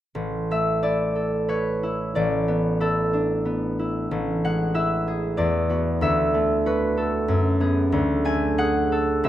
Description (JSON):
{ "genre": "classical, solo harp piece", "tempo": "93 BPM", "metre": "3/4", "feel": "uneven beats, rubato", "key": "A major", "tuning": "A4 = 441 Hz", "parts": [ { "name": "concert harp", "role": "solo", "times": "0.1-9.3 s", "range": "A1 to G#5", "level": "-20 LUFS", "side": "equal", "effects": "none" } ], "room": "light reverb", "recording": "close, detailed microphones", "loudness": "-20 LUFS", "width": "side -12 dB against mid", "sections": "0.2-9.3 A section", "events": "none", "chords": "0.2 Aadd9; 4.1 Amaj7; 5.4 E9sus4; 6.0 D69; 7.3 F#m11; 7.9 D" }